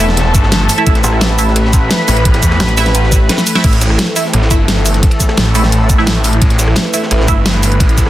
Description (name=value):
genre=dark technical drum and bass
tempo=173 BPM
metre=4/4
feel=straight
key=unclear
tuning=A4 = 439 Hz
part: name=sweeping resonant pad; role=sustained chords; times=0.0-8.1 s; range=E3 to B4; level=-19 LUFS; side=left 1 dB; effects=chorus, sidechain pumping
part: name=band-passed chord stab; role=stabs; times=0.0-7.3 s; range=A3 to E5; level=-19 LUFS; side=right 3 dB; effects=phaser, analog chorus, tape echo
part: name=snarling distorted saw bass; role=bass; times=0.0-8.1 s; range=E1 to E2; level=-13 LUFS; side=equal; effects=distortion, overdrive
part: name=crunchy breakbeat drum kit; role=drums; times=0.0-8.1 s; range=ride cymbal, snare drum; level=-23 LUFS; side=equal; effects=high-pass filter on cymbals, high-pass filter on snare, high-pass filter on room
part: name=dubstep drum kit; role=drums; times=0.0-8.1 s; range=crash cymbal, hi-hat, rim click, shaker, snare drum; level=-16 LUFS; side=equal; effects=none
part: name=muted studio string section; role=texture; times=0.0-3.7 s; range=A4 to B5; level=-20 LUFS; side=left 1 dB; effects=sidechain pumping
part: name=electronic kick drum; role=drums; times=0.3-8.0 s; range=none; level=-11 LUFS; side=equal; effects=none
part: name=pulsing pluck wobble bass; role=bass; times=1.0-3.3 s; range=A1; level=-13 LUFS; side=equal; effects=chorus, tube saturation
room=studio ambience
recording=dense, heavily limited modern master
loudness=-9 LUFS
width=side -14 dB against mid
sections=0.0-3.6 A section; 3.6-8.1 A section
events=drop 0.0-3.6, 3.6-8.1; drum fill 3.3-3.6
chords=0.0 A5